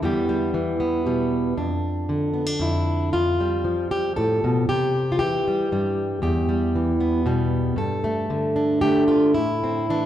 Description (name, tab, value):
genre	folk, solo fingerstyle acoustic guitar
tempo	116 BPM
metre	3/4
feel	rubato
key	unclear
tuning	A4 = 441 Hz
part	fingerpicked plugged-in steel-string acoustic guitar	solo	0.0-10.1 s	E2 to A4	-20 LUFS	equal	none
room	wet scoring stage reverb, RT60 1.7 s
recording	dark, warm production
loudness	-20 LUFS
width	side -11 dB against mid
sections	0.0-9.4 A section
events	none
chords	0.0 Em; 1.6 Dm/F; 3.1 Fadd9; 4.7 C; 6.2 Em; 7.8 Gsus2; 9.4 Am